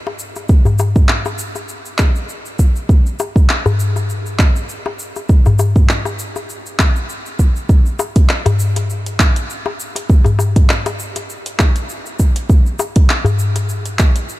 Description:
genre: downtempo.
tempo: 100 BPM.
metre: 4/4.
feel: swing 55% on 16ths.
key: none.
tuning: none.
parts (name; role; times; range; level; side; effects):
darbuka; percussion; 0.1-13.7 s; none; -18 LUFS; left 2 dB; none.
deep house drum kit; drums; 0.2-14.4 s; cabasa, handclaps, hi-hat; -22 LUFS; equal; studio reverb.
electronic kick drum; drums; 0.5-14.1 s; none; -11 LUFS; equal; studio reverb.
room: digital ambience.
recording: dark, warm production.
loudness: -13 LUFS.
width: side -17 dB against mid.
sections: 0.0-14.4 A section.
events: none.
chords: none.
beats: | 0.49 1.09 1.69 2.29 | 2.89 3.49 4.09 4.69 | 5.29 5.89 6.49 7.09 | 7.69 8.29 8.89 9.49 | 10.09 10.69 11.29 11.89 | 12.49 13.09 13.69 14.29.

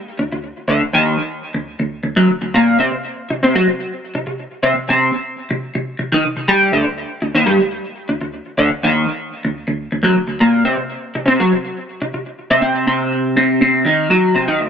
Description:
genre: rock.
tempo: 122 BPM.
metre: 4/4.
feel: straight.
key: unclear.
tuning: A4 = 440 Hz.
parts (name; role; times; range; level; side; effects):
electric guitar through a small old amp; solo; 0.2-14.7 s; D2 to G4; -14 LUFS; equal; flanger, digital delay.
room: moderate spring reverb, RT60 1.6 s, digital ambience.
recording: none.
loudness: -14 LUFS.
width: side -7 dB against mid.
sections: 0.0-14.6 A section.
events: none.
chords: 0.0 N.C.; 10.7 Cm.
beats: 0.33 | 0.82 1.31 1.80 2.30 | 2.79 3.28 3.77 4.26 | 4.75 5.25 5.74 6.23 | 6.72 7.21 7.70 8.19 | 8.69 9.18 9.67 10.16 | 10.65 11.14 11.63 12.12 | 12.62 13.11 13.60 14.10 | 14.59.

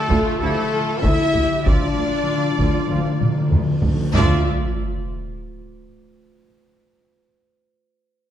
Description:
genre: cinematic, epic orchestral film score.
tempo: 96 BPM.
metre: 4/4.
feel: straight.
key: D minor.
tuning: A4 = 436 Hz.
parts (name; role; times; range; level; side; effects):
rich symphonic violin section; melody; 0.0-4.5 s; A4 to E5; -30 LUFS; left 1 dB; none.
rich symphonic violin section; second line; 0.0-4.5 s; A4 to E5; -29 LUFS; left 1 dB; none.
clear symphonic viola section; accompaniment; 0.0-4.5 s; F4 to E5; -30 LUFS; right 2 dB; none.
warm French horn section; sustained chords; 0.0-4.4 s; A3 to E4; -24 LUFS; left 5 dB; none.
clear trumpet; stabs; 0.0-4.4 s; A4 to E5; -29 LUFS; right 2 dB; none.
timpani; percussion; 0.0-4.4 s; D3; -25 LUFS; left 1 dB; none.
rich symphonic cello section; bass; 0.1-4.5 s; D2; -27 LUFS; right 2 dB; none.
rich symphonic double bass section; bass; 0.1-4.5 s; D2; -25 LUFS; right 2 dB; none.
taiko ensemble; drums; 0.1-4.3 s; none; -22 LUFS; equal; none.
warm trombone section; sustained chords; 0.4-4.4 s; F3 to F4; -31 LUFS; right 2 dB; none.
reverse cymbal and sub drop; sound effects; 4.0-6.6 s; none; -27 LUFS; equal; none.
room: moderate scoring stage reverb, RT60 1.7 s.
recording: dark, warm production.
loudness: -17 LUFS.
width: side -10 dB against mid.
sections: 0.0-4.2 A section; 4.2-6.6 B section.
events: timpani fill 0.0-4.2; drum fill 3.2-4.2; reverse cymbal 4.0; impact 4.2-6.6.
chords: 0.0 Dmadd9.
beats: 0.41 1.04 | 1.66 2.28 2.91 3.53 | 4.15 4.77 5.40 6.02.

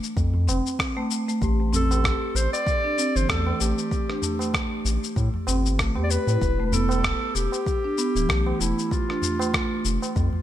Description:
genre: organic downtempo.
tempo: 96 BPM.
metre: 4/4.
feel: swing 57% on 16ths.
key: A minor.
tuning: A4 = 442 Hz.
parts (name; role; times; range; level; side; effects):
marimba with medium mallets; arpeggios; 0.0-10.2 s; E3 to G4; -28 LUFS; right 2 dB; ping-pong delay.
electronic shaker and rim click; drums; 0.0-10.3 s; none; -29 LUFS; left 3 dB; none.
round analog bass; bass; 0.2-10.3 s; D1 to A2; -24 LUFS; equal; none.
electronic kick drum; drums; 0.2-10.3 s; none; -28 LUFS; equal; none.
tabla; percussion; 0.3-10.4 s; none; -33 LUFS; right 2 dB; none.
bronze singing bowl; texture; 1.4-10.4 s; G4; -40 LUFS; left 11 dB; none.
warm clarinet; melody; 1.8-10.2 s; E4 to D5; -28 LUFS; equal; ping-pong delay.
room: light reverb, studio ambience.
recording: bright 1980s-style digital production.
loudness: -21 LUFS.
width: side -12 dB against mid.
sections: 0.0-10.4 A section.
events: none.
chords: 0.0 F; 1.4 A7(no3); 6.4 Em; 8.9 Fadd9.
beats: 0.16 0.79 | 1.41 2.04 2.66 3.29 | 3.91 4.54 5.16 5.79 | 6.41 7.04 7.66 8.29 | 8.91 9.54 10.16.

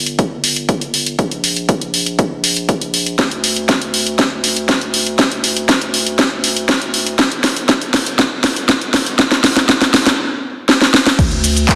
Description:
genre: progressive house.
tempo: 120 BPM.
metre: 4/4.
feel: straight.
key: unclear.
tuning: A4 = 440 Hz.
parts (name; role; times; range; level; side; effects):
round analog bass; bass; 0.0-11.8 s; G1 to D2; -26 LUFS; equal; sidechain pumping, high-pass filter.
house drum kit; drums; 0.1-11.8 s; cabasa, crash cymbal, handclaps, hi-hat, snare drum; -16 LUFS; equal; overdrive, studio reverb.
electronic kick drum; drums; 0.2-11.8 s; none; -20 LUFS; equal; overdrive, high-pass filter on kick, studio reverb.
room: moderate lush hall reverb, RT60 1.5 s.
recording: dense, heavily limited modern master.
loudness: -15 LUFS.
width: mono.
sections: 0.0-11.2 A section.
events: build-up 0.0-11.2; drum fill 3.2-10.2, 10.7-11.2.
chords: none.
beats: 0.19 0.69 | 1.19 1.69 2.19 2.69 | 3.19 3.69 4.19 4.69 | 5.19 5.69 6.19 6.69 | 7.19 7.69 8.19 8.69 | 9.19 9.69 10.19 10.69 | 11.19 11.69.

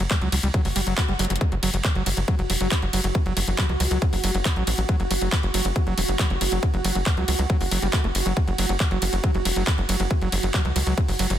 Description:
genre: psychedelic trance.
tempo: 138 BPM.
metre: 4/4.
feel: straight.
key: unclear.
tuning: A4 = 440 Hz.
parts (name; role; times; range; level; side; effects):
overdriven acid bass; riff; 0.0-11.3 s; F#3 to A3; -29 LUFS; right 1 dB; distortion, auto-pan, sidechain pumping, tape echo.
tight sequencer bass; bass; 0.0-11.4 s; E1 to C#2; -25 LUFS; equal; none.
drum and bass drum kit; drums; 0.0-11.4 s; handclaps, hi-hat, ride cymbal; -27 LUFS; equal; overdrive.
electronic kick drum; drums; 0.1-11.1 s; none; -23 LUFS; equal; none.
swell and zap; sound effects; 0.7-1.4 s; none; -35 LUFS; left 2 dB; none.
pulsing gated texture; sustained chords; 2.0-11.4 s; F#4; -30 LUFS; right 4 dB; chorus, built-in reverb, sidechain pumping.
room: digital ambience.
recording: dense, heavily limited modern master.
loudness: -20 LUFS.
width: side -11 dB against mid.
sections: 0.0-11.4 A section.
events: swell 0.7-1.4; drum fill 1.2.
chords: 0.0 F#5.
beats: 0.11 0.54 0.98 | 1.41 1.84 2.28 2.71 | 3.15 3.58 4.02 4.45 | 4.89 5.32 5.76 6.19 | 6.63 7.06 7.50 7.93 | 8.37 8.80 9.24 9.67 | 10.11 10.54 10.98.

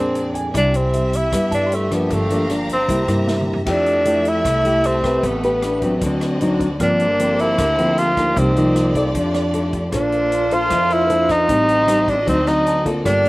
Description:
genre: bossa nova.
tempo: 153 BPM.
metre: 4/4.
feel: straight.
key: C major, F major from 3.7 s.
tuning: A4 = 437 Hz.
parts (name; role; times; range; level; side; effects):
mellow tenor saxophone; melody; 0.0-13.3 s; A3 to F4; -18 LUFS; equal; slapback echo.
nylon-string guitar; accompaniment; 0.0-13.3 s; G2 to D5; -21 LUFS; left 1 dB; none.
warm symphonic violin section; sustained chords; 0.0-13.3 s; A3 to F6; -28 LUFS; equal; none.
upright bass; bass; 0.0-13.3 s; G1 to G2; -25 LUFS; equal; none.
vintage drum kit; drums; 0.1-13.3 s; crash cymbal, hi-hat, kick drum, rim click, snare drum, toms; -29 LUFS; equal; none.
warm baby grand piano; accompaniment; 0.3-13.2 s; D5 to F6; -33 LUFS; right 3 dB; none.
mellow wooden-headed alto flute; second line; 3.7-13.3 s; A3 to Gb4; -24 LUFS; equal; slapback echo.
room: little or no reverb.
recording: recorded outdoors, with no room sound.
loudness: -15 LUFS.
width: side -20 dB against mid.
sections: 0.0-3.7 A section; 3.7-13.3 B section.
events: drum fill 3.3-3.7.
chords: 0.0 Bb9; 0.5 Cmaj7; 2.1 Gm7; 2.9 C7; 3.7 Fmaj9; 5.2 Am9; 6.0 D7b9; 6.8 Gm11; 8.4 Cm11; 9.1 F13; 9.9 Bbmaj9; 11.5 Am7b5; 12.3 D7b9.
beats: 0.14 | 0.54 0.93 1.32 1.71 | 2.10 2.50 2.89 3.28 | 3.67 4.06 4.45 4.84 | 5.24 5.63 6.02 6.41 | 6.80 7.19 7.58 7.97 | 8.36 8.76 9.15 9.54 | 9.93 10.32 10.71 11.10 | 11.49 11.88 12.27 12.66 | 13.05.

